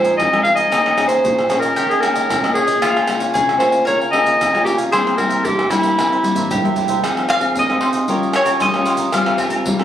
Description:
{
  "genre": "samba and choro",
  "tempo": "114 BPM",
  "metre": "4/4",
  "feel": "straight",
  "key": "F minor",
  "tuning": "A4 = 437 Hz",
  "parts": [
    { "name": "clear clarinet", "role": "melody", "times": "0.0-6.8 s", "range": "E4 to F5", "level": "-16 LUFS", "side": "equal", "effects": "none" },
    { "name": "mandolin", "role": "second line", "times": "0.0-9.4 s", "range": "Eb4 to F5", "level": "-20 LUFS", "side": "equal", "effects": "none" },
    { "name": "cavaquinho", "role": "accompaniment", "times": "0.0-9.8 s", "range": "Eb4 to Ab5", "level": "-26 LUFS", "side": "right 2 dB", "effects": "none" },
    { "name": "nylon-string guitar", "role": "accompaniment", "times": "0.0-9.8 s", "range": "F2 to Bb4", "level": "-21 LUFS", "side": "left 3 dB", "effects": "none" },
    { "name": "maracas, pandeiro, surdo, tamborim and agogo bells", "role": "percussion", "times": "0.0-9.8 s", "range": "none", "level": "-21 LUFS", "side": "equal", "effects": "none" }
  ],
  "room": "light reverb",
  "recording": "recorded on a phone in the room, club reverb",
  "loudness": "-14 LUFS",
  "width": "side -10 dB against mid",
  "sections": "0.0-7.0 A section; 7.0-9.8 B section",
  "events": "drum fill 6.0-7.0; mandolin solo 7.0-9.8",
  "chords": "0.0 Bb7sus4; 0.7 Eb7sus4; 2.8 Bbm7/Db; 4.9 C7; 7.0 Fm7; 8.1 Gm7b5; 9.1 C7sus4/G"
}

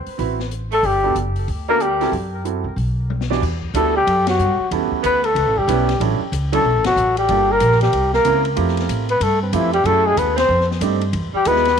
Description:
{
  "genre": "jazz, small-group swing and bop",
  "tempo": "186 BPM",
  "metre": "4/4",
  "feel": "swing 63% on 8ths",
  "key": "G major, E minor from 3.4 s",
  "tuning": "A4 = 439 Hz",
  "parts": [
    { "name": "upright bass", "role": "bass", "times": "0.0-11.8 s", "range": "F#1 to A2", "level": "-22 LUFS", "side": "equal", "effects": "none" },
    { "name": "open jazz drum kit", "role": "drums", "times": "0.1-11.8 s", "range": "crash cymbal, hi-hat, kick drum, ride cymbal, snare drum, toms", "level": "-31 LUFS", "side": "left 10 dB", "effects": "none" },
    { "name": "warm grand piano", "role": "accompaniment", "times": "0.2-11.6 s", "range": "E3 to D5", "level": "-23 LUFS", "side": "right 13 dB", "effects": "none" },
    { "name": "mellow flugelhorn", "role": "melody", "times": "0.7-11.8 s", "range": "C4 to C5", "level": "-18 LUFS", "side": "left 3 dB", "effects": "tape echo" },
    { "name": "warm tenor saxophone", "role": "second line", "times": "0.7-11.8 s", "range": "C3 to C4", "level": "-25 LUFS", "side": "right 11 dB", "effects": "none" }
  ],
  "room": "light reverb, studio reverb",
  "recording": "1960s-style stereo with parts hard left and right",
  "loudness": "-16 LUFS",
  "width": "side -7 dB against mid",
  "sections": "0.0-3.4 A section; 3.4-11.8 B section",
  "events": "drum fill 3.1-3.4; band accent 4.2, 6.8, 10.3",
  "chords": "0.0 D13 (rootless); 0.8 Gmaj9; 2.1 F#m7b5; 2.8 Bm; 3.4 Em9; 4.7 A9; 6.0 Dmaj9; 7.3 Gm9; 7.9 C7b9; 8.6 Fmaj9; 9.9 F#m9; 10.5 F13; 11.1 Emaj9"
}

